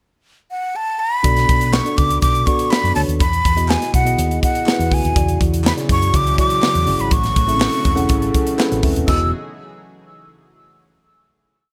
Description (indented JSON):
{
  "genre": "polished 1980s jazz-funk pop",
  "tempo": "122 BPM",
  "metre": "4/4",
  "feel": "straight",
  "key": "E major",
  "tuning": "A4 = 440 Hz",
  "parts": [
    { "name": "breathy mellow silver concert flute", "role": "melody", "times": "0.5-9.3 s", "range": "F#5 to E6", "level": "-22 LUFS", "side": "equal", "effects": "none" },
    { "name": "mellow tine electric piano", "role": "accompaniment", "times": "1.2-9.3 s", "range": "C#3 to G#5", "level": "-24 LUFS", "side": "equal", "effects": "subtle chorus" },
    { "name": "hollow-body short-scale fingered electric bass", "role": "bass", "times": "1.2-9.3 s", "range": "D#1 to F#2", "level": "-22 LUFS", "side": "equal", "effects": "none" },
    { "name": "crisp fusion drum kit", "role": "drums", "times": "1.2-9.2 s", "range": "crash cymbal, hi-hat, kick drum, snare drum", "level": "-21 LUFS", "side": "equal", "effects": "none" },
    { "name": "group handclap", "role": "percussion", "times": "1.7-9.3 s", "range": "none", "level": "-37 LUFS", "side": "equal", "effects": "none" },
    { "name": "lush unison pad", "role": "sustained chords", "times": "5.2-9.3 s", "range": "C#3 to G#4", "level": "-32 LUFS", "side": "equal", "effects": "chorus" }
  ],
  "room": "light reverb",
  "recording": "none",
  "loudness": "-17 LUFS",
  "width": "mono",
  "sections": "0.0-1.2 pickup bar; 1.2-9.1 pre-chorus; 9.1-11.0 final chord",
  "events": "tine electric piano fill 8.3-9.1",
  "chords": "0.0 N.C.; 1.2 Bm7; 3.2 Emaj9; 5.2 E13; 7.1 Amaj7; 9.1 Emaj9"
}